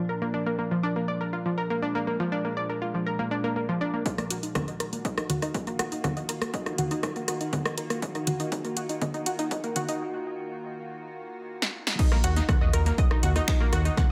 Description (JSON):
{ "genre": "melodic techno", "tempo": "121 BPM", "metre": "4/4", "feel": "straight", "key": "Eb harmonic minor", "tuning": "A4 = 440 Hz", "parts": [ { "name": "evolving wavetable pad", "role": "sustained chords", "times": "0.0-14.1 s", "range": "Bb2 to Gb4", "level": "-38 LUFS", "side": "equal", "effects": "chorus, built-in reverb, sidechain pumping" }, { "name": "analog pluck", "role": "arpeggios", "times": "0.1-14.0 s", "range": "F3 to Gb5", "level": "-32 LUFS", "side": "equal", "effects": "chorus, sidechain pumping, dub echo" }, { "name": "electronic kick drum", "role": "drums", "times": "4.1-14.1 s", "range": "none", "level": "-29 LUFS", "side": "equal", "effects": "high-pass filter on kick, studio reverb" }, { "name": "house drum kit", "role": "drums", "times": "4.1-14.1 s", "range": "congas, crash cymbal, finger snaps, hi-hat, rim click, snare drum", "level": "-32 LUFS", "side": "equal", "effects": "studio reverb, tape echo" }, { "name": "dark detuned saw bass", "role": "bass", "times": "12.2-13.9 s", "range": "Eb2", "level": "-27 LUFS", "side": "equal", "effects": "sidechain pumping" } ], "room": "light reverb, digital ambience", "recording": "echo-heavy mix, high-pass filter", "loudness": "-28 LUFS", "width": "mono", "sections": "0.0-4.1 A section; 4.1-12.0 B section; 12.0-14.1 C section", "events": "build-up 4.1-12.0; filter sweep on synth pluck 4.1-12.0; filter sweep 4.1-12.0; drum fill 8.0-10.0, 11.6-12.0; break 10.0-12.0; drop 12.0-14.1", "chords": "0.0 Bb; 4.1 Ebm" }